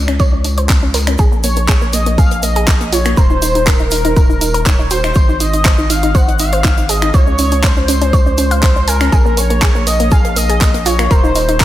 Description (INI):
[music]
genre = progressive house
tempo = 121 BPM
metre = 4/4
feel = straight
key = Bb minor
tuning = A4 = 441 Hz
[part]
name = analog pluck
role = arpeggios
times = 0.0-11.6 s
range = Bb3 to Ab5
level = -19 LUFS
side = equal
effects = chorus, sidechain pumping, analog delay
[part]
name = round analog bass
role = bass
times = 0.0-11.6 s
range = Eb1 to Db2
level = -17 LUFS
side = equal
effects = sidechain pumping
[part]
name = pop drum kit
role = drums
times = 0.1-11.6 s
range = finger snaps, handclaps, hi-hat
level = -19 LUFS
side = equal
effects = sidechain pumping on hats
[part]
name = electronic kick drum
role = drums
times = 0.2-11.6 s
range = none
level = -12 LUFS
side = equal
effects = none
[part]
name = modern studio drum kit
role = drums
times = 0.2-11.6 s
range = hi-hat, snare drum, tambourine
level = -30 LUFS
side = left 1 dB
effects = none
[part]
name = tube shaker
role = percussion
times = 1.2-11.6 s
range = none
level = -27 LUFS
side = right 5 dB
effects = none
[part]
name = wide unison lead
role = melody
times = 1.4-11.6 s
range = Bb4 to Gb5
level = -18 LUFS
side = equal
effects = lush chorus, cassette tape, sidechain pumping, diffuse ambient delay
[sound]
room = light reverb, small room ambience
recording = none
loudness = -10 LUFS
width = side -14 dB against mid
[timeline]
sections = 0.0-11.6 A section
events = filter sweep on synth arpeggio sound 0.0-11.6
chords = 0.0 Bbmadd9/Db; 1.2 Bbm; 3.2 Eb5; 5.2 Ab5; 7.1 Dbmaj7(no3); 9.1 Bbm; 11.1 Eb5